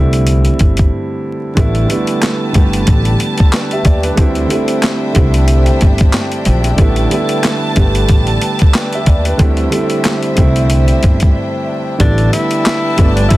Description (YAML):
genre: hip hop, boom-bap hip-hop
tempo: 92 BPM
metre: 4/4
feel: swing 56% on 16ths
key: unclear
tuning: A4 = 440 Hz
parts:
  - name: dark concert grand piano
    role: accompaniment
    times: 0.0-13.4 s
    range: D3 to E5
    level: -16 LUFS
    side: right 2 dB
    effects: cassette tape, plate reverb
  - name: upright bass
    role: bass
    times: 0.0-13.4 s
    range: G1 to D#2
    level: -14 LUFS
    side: equal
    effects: none
  - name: boom bap sampler-style drum kit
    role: drums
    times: 0.1-13.4 s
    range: handclaps, hi-hat, kick drum, snare drum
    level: -12 LUFS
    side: equal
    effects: none
  - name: warm studio string section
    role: sustained chords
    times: 1.6-13.4 s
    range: D4 to A5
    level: -22 LUFS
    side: left 2 dB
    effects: none
  - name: breathy tenor saxophone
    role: melody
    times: 12.0-13.4 s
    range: D4 to E4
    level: -17 LUFS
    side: left 1 dB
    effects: ping-pong delay, plate reverb
room: light reverb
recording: dense, heavily limited modern master, vinyl crackle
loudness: -10 LUFS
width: side -17 dB against mid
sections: 0.0-12.0 A section; 12.0-13.4 B section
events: break 0.9-1.6, 11.4-12.0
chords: 0.0 D9sus4; 1.6 A9sus4; 4.2 D9sus4; 6.8 A9sus4; 9.4 D9sus4; 12.0 A9sus4